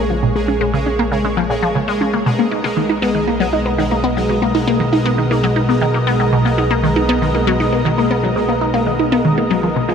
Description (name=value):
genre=ambient, sequencer-driven space music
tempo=118 BPM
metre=4/4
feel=straight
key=unclear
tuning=A4 = 440 Hz
part: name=lush unison pad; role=sustained chords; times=0.0-9.9 s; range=Bb3 to D#5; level=-23 LUFS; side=equal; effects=chorus
part: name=fat analog bass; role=bass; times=0.0-9.9 s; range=Bb1 to B1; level=-21 LUFS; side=equal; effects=none
part: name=pulsing gated texture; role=texture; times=0.0-9.9 s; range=Ab3 to Ab4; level=-21 LUFS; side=right 1 dB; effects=chorus, built-in reverb
part: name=resonant blip pluck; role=riff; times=0.1-9.9 s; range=Bb2 to D#4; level=-17 LUFS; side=left 1 dB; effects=phaser, ping-pong delay
room=moderate huge ambient reverb, RT60 8.7 s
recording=none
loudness=-14 LUFS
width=side -7 dB against mid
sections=0.0-9.9 A section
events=fade-in on analog synth pad 0.0-9.9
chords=0.0 Bbm7; 2.3 Bmaj7